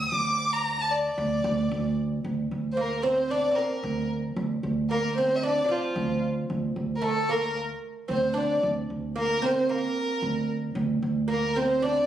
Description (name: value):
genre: arabic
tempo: 113 BPM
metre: 4/4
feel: straight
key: D maqam saba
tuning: A4 = 440 Hz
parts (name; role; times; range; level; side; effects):
- dark violin; melody; 0.0-12.1 s; F4 to D6; -26 LUFS; left 1 dB; plate reverb
- upright bass; bass; 0.0-12.0 s; D2; -29 LUFS; right 2 dB; none
- oud; second line; 2.8-12.1 s; F3 to D4; -31 LUFS; right 4 dB; none
room: moderate small room reverb, RT60 0.6 s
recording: recorded on a phone in the room, studio reverb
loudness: -24 LUFS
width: side -11 dB against mid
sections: 0.0-2.2 A section; 2.2-12.1 B section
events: none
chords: none